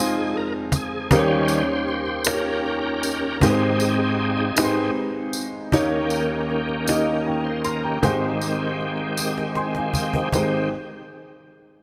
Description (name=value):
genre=slow gospel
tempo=52 BPM (dotted quarters)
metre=6/8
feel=straight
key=Ab major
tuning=A4 = 440 Hz
part: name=warm upright piano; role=accompaniment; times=0.0-10.7 s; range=F1 to C6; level=-26 LUFS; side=equal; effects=analog chorus
part: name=bright tonewheel organ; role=sustained chords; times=0.0-10.7 s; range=Ab2 to C5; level=-27 LUFS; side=equal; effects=fast rotary speaker, overdrive, chorus vibrato
part: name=cajon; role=drums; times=0.4-10.5 s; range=none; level=-25 LUFS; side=equal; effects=none
part: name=tambourine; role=percussion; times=0.7-10.7 s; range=none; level=-32 LUFS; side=equal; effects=none
room=wet plate reverb, RT60 2.6 s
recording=bright 1980s-style digital production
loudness=-23 LUFS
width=mono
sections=0.0-5.7 A section; 5.7-10.3 B section; 10.3-11.8 C section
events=tonewheel organ solo 0.0-5.7; drum fill 9.2-10.3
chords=0.0 Fm7; 1.1 Eb7; 3.4 Abmaj7; 5.7 Eb7; 8.0 Abmaj7